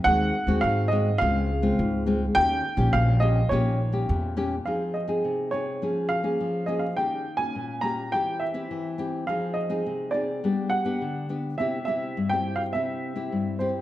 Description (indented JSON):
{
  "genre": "samba and choro",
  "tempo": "104 BPM",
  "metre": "4/4",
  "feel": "straight",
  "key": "F minor from 4.7 s",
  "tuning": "A4 = 440 Hz",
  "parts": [
    { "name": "dark baby grand piano", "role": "melody", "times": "0.0-13.7 s", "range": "C5 to Bb5", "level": "-27 LUFS", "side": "right 1 dB", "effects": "none" },
    { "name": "nylon-string guitar", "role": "accompaniment", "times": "0.0-13.8 s", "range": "G2 to Ab4", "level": "-27 LUFS", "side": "left 2 dB", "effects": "none" },
    { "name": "upright bass", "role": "bass", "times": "0.1-4.6 s", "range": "Bb1 to Ab2", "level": "-25 LUFS", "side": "equal", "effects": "none" }
  ],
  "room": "wet large studio reverb, RT60 1.3 s",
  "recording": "none",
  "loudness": "-23 LUFS",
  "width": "side -14 dB against mid",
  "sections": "0.0-4.7 A section; 4.7-13.8 B section",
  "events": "none",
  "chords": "0.1 Ab7/Eb; 1.2 Dbmaj7; 2.4 Eb7; 4.7 Fm7; 5.8 Bbm7/F; 7.0 Eb7; 8.1 C/E; 9.3 Fm7; 10.4 G; 11.6 C"
}